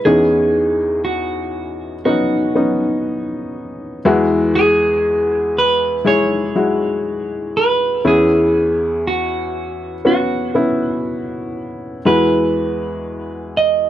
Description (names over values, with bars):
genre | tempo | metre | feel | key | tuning
pop | 60 BPM | 4/4 | straight | E major | A4 = 439 Hz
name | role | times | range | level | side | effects
clean electric guitar | melody | 0.0-13.9 s | F#4 to D#5 | -17 LUFS | right 2 dB | none
warm upright piano | accompaniment | 0.0-13.9 s | E2 to G#4 | -18 LUFS | left 1 dB | none
room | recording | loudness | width
little or no reverb | dry, close 1970s-style studio recording | -14 LUFS | side -12 dB against mid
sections
0.0-13.9 A section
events
none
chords
0.0 Badd9/E; 4.0 Eadd9; 8.0 C#m7/E; 12.0 Eadd9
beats
| 0.05 1.05 2.05 3.05 | 4.05 5.05 6.05 7.05 | 8.05 9.05 10.05 11.05 | 12.05 13.05